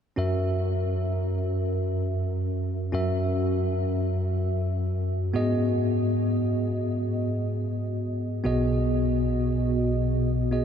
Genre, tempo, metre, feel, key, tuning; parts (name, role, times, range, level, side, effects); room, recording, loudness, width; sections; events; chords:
pop; free time; F# mixolydian; A4 = 440 Hz
bell-like tine electric piano; accompaniment; 0.2-10.6 s; B1 to E5; -24 LUFS; equal; medium stereo tremolo
wet huge ambient reverb, RT60 8.5 s; dreamy mix soaked in reverb; -24 LUFS; side -8 dB against mid
0.2-10.6 A section
0.2 F#7; 5.3 G#m7; 8.5 B6